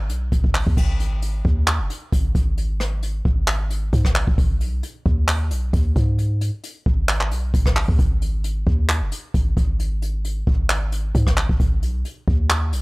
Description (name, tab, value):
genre	hip hop, trap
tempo	133 BPM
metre	4/4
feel	half-time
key	G# minor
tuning	A4 = 440 Hz
part	warm 808-style bass	bass	0.0-12.8 s	F#1 to G#2	-21 LUFS	equal	none
part	jazz brush drum kit	drums	0.1-12.8 s	crash cymbal, handclaps, hi-hat, kick drum, rim click	-20 LUFS	equal	none
room	little or no reverb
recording	dry, gritty hardware recording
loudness	-18 LUFS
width	side -25 dB against mid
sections	0.8-12.8 A section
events	none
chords	none